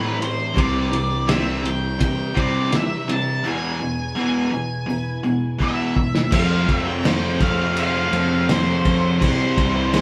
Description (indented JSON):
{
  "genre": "classic rock",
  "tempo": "83 BPM",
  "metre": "4/4",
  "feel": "straight",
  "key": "unclear",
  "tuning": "A4 = 440 Hz",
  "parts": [
    { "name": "octave-fuzz lead guitar", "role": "melody", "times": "0.0-10.0 s", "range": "C5 to A5", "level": "-29 LUFS", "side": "equal", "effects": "distortion" },
    { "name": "picked plugged-in twelve-string acoustic guitar", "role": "accompaniment", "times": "0.0-10.0 s", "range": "C3 to C5", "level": "-34 LUFS", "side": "equal", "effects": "none" },
    { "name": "biting overdriven guitar", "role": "riff", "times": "0.0-10.0 s", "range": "E2 to F4", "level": "-28 LUFS", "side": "equal", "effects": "none" },
    { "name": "crunchy overdriven guitar", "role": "riff", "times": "0.0-10.0 s", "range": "E2 to F4", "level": "-28 LUFS", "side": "equal", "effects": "none" },
    { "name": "fuzz picked electric bass", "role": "bass", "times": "0.0-10.0 s", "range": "C2 to C3", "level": "-28 LUFS", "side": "equal", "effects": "overdrive" },
    { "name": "cloth-damped thuddy drum kit", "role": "drums", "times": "0.2-10.0 s", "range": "crash cymbal, kick drum, ride cymbal, snare drum", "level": "-25 LUFS", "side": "equal", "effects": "none" },
    { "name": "clear grand piano", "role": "accompaniment", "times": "6.3-10.0 s", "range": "E4 to C5", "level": "-38 LUFS", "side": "equal", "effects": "none" },
    { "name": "string machine, full ensemble", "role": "sustained chords", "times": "6.3-10.0 s", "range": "G3 to F4", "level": "-36 LUFS", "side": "equal", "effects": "none" }
  ],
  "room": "wet studio reverb, RT60 0.7 s",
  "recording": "band playing live in one room",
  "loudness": "-21 LUFS",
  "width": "mono",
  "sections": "0.0-6.3 A section; 6.3-10.0 B section",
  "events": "drum fill 5.6-6.3",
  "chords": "0.0 Am; 0.6 C; 3.4 E; 6.3 F; 9.2 C"
}